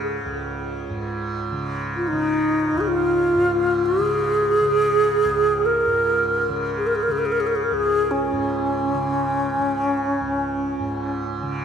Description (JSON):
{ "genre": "world meditative, free-time meditation music", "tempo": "free time", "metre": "none", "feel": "none", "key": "Db major pentatonic", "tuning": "A4 = 441 Hz", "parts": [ { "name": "alto flute", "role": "melody", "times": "0.0-11.2 s", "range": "Db4 to Bb4", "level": "-20 LUFS", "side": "equal", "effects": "ping-pong delay" }, { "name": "tanpura", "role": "drone", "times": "0.0-11.6 s", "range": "Db2 to Db3", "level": "-27 LUFS", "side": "right 2 dB", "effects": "none" } ], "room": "wet church reverb, RT60 3.6 s", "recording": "cassette tape", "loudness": "-19 LUFS", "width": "side -7 dB against mid", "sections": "0.0-11.6 A section", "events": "none", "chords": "none" }